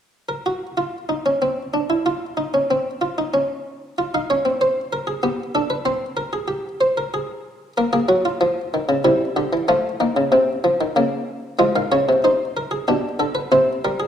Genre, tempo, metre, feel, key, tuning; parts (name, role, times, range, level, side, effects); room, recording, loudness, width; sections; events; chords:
classical, baroque-style 3-part fugue for harpsichord; 94 BPM; 3/4; straight; A4 = 440 Hz
buff-stop harpsichord; solo; 0.3-14.1 s; B2 to F5; -18 LUFS; equal
wet recital hall reverb, RT60 1.7 s; -18 LUFS; side -9 dB against mid
0.1-14.1 A section
0.1 N.C.; 4.0 Fm; 5.2 G/B; 5.9 C5; 7.1 Ab/C; 7.8 Bbm; 9.0 C; 9.7 F; 11.0 Bbm/Db; 11.6 Fm; 12.9 G/B; 13.5 C5